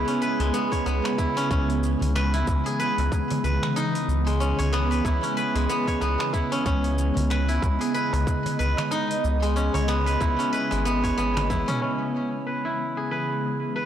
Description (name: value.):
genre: organic downtempo.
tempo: 93 BPM.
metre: 4/4.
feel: swing 57% on 16ths.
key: C# minor.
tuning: A4 = 439 Hz.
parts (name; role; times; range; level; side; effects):
ethereal airy pad; sustained chords; 0.0-13.9 s; C#3 to D#5; -28 LUFS; right 1 dB; ensemble chorus, built-in reverb, phaser, sidechain pumping.
steel-string zither; arpeggios; 0.0-13.9 s; G#3 to C#5; -26 LUFS; equal; low-pass filter, tape echo.
round analog bass; bass; 0.0-11.6 s; G#1 to C#2; -25 LUFS; equal; sidechain pumping.
deep house drum kit; drums; 0.1-11.8 s; finger snaps, hi-hat, shaker, toms; -36 LUFS; equal; overdrive, low-pass filter on hats, low-pass filter on perc, soft clipping on snare, low-pass filter on snare, low-pass filter on toms.
darbuka; percussion; 0.1-11.8 s; none; -36 LUFS; right 2 dB; none.
electronic kick drum; drums; 0.7-11.6 s; none; -26 LUFS; equal; none.
room: moderate concert hall reverb, RT60 2.2 s.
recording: blown-out, overdriven recording, overdrive.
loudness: -22 LUFS.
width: side -10 dB against mid.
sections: 0.0-11.8 A section; 11.8-13.9 B section.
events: drum fill 11.3-11.8; filter sweep on guzheng 11.8-13.9.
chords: 0.0 C#m7.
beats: 0.21 0.86 | 1.50 2.15 2.79 3.44 | 4.08 4.73 5.37 6.02 | 6.67 7.31 7.96 8.60 | 9.24 9.89 10.54 11.18 | 11.83 12.47 13.12 13.76.